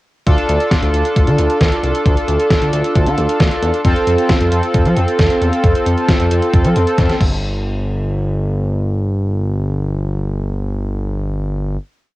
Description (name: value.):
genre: synth-pop.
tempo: 134 BPM.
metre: 4/4.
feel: straight.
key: unclear.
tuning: A4 = 439 Hz.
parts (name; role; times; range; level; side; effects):
analog synth brass; accompaniment; 0.3-7.2 s; C4 to A4; -16 LUFS; equal; chorus.
smooth gliding synth bass; bass; 0.3-11.8 s; G1 to F3; -17 LUFS; equal; none.
detuned 8-bit digital drum machine; drums; 0.3-7.3 s; crash cymbal, hi-hat, kick drum, snare drum; -16 LUFS; equal; cassette tape.
room: moderate spring reverb, RT60 1.3 s.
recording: home recording on cassette.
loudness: -13 LUFS.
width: side -17 dB against mid.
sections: 0.3-7.4 bridge; 7.4-11.0 final hit.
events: drum fill 7.0-7.4.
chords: 0.3 Dm; 3.8 F; 7.2 N.C..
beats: | 0.27 0.71 1.16 1.61 | 2.06 2.50 2.95 3.40 | 3.85 4.30 4.74 5.19 | 5.64 6.09 6.54 6.98 | 7.43 7.88 8.33 8.77 | 9.22 9.67 10.12 10.56.